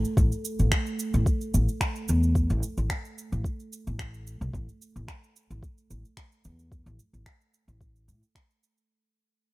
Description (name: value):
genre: organic downtempo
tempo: 110 BPM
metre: 4/4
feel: straight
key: unclear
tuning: A4 = 440 Hz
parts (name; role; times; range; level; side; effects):
- upright bass; bass; 0.0-8.2 s; A1 to A2; -26 LUFS; equal; none
- electronic shaker and finger snaps; drums; 0.0-8.9 s; none; -35 LUFS; right 1 dB; none
- quartz singing bowl; texture; 0.0-8.9 s; A3 to A4; -36 LUFS; right 3 dB; none
- electronic kick drum; drums; 0.2-8.5 s; none; -26 LUFS; equal; none
room: light reverb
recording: none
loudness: -25 LUFS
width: side -20 dB against mid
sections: 0.0-8.9 A section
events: fade-out 0.0-8.9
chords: none